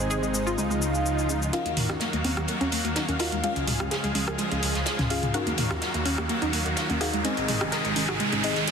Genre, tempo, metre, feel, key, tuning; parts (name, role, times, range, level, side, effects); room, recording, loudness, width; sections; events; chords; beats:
progressive house; 126 BPM; 4/4; straight; Eb dorian; A4 = 440 Hz
warm velvety synth lead; melody; 0.0-1.4 s; C5 to F5; -33 LUFS; right 2 dB; chorus, tremolo, dub echo
supersaw pad; sustained chords; 0.0-8.7 s; C3 to F5; -31 LUFS; right 1 dB
analog pluck; arpeggios; 0.0-8.4 s; Ab3 to Bb4; -31 LUFS; right 1 dB; chorus, dub echo
deep mellow chord stab; stabs; 0.0-8.5 s; C4 to F5; -33 LUFS; left 4 dB; chorus, dub echo
dark detuned saw bass; bass; 0.0-8.7 s; Ab1 to Eb2; -32 LUFS; equal
pop drum kit; drums; 0.0-8.7 s; hi-hat, rim click, shaker; -31 LUFS; right 1 dB; overdrive
swell and riser; sound effects; 0.8-8.7 s; -33 LUFS; right 1 dB
natural country drum kit; drums; 1.5-8.7 s; ride cymbal, snare drum; -34 LUFS; left 2 dB; high-pass filter on cymbals, high-pass filter on snare, high-pass filter on room
electronic congas and toms; percussion; 1.5-8.4 s; -33 LUFS; left 1 dB
moderate lush hall reverb, RT60 1.8 s; dense, heavily limited modern master, high-pass filter; -24 LUFS; side -6 dB against mid
0.0-1.5 A section; 1.5-8.7 B section
filter sweep on synth pluck 0.0-1.5, 1.5-8.7; swell 0.8-1.5; build-up 1.5-8.7; riser 4.2-8.7
0.0 Ab; 0.6 Dbadd9; 1.5 Ebmadd9; 3.4 Db; 5.3 Ebmadd9; 7.2 Ab
0.10 0.58 1.06 | 1.53 2.01 2.48 2.96 | 3.44 3.91 4.39 4.87 | 5.34 5.82 6.29 6.77 | 7.25 7.72 8.20 8.68